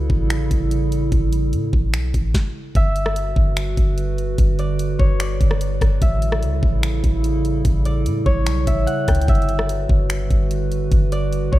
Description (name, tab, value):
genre	hip hop, atmospheric cloud-rap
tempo	147 BPM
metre	4/4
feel	half-time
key	G lydian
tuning	A4 = 439 Hz
part	warbly tape-like pad	sustained chords	0.0-11.6 s	C#3 to B4	-25 LUFS	right 2 dB	chorus, built-in reverb, sidechain pumping
part	soft 808-style bass	bass	0.0-11.6 s	G1 to A2	-21 LUFS	equal	none
part	trap drum kit	drums	0.1-11.6 s	finger snaps, hi-hat, kick drum, rim click, snare drum	-19 LUFS	equal	none
part	Celtic harp	melody	2.8-11.6 s	C#5 to G5	-27 LUFS	left 1 dB	digital delay
room	light reverb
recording	dark, warm production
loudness	-17 LUFS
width	side -15 dB against mid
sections	0.0-2.8 A section; 2.8-11.6 B section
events	stop 2.3-2.8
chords	0.0 A7; 2.8 Gmaj7; 6.0 A7; 9.3 Gmaj7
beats	0.30 0.71 | 1.12 1.53 1.94 2.34 | 2.75 3.16 3.57 3.98 | 4.38 4.79 5.20 5.61 | 6.02 6.43 6.83 7.24 | 7.65 8.06 8.47 8.88 | 9.28 9.69 10.10 10.51 | 10.92 11.32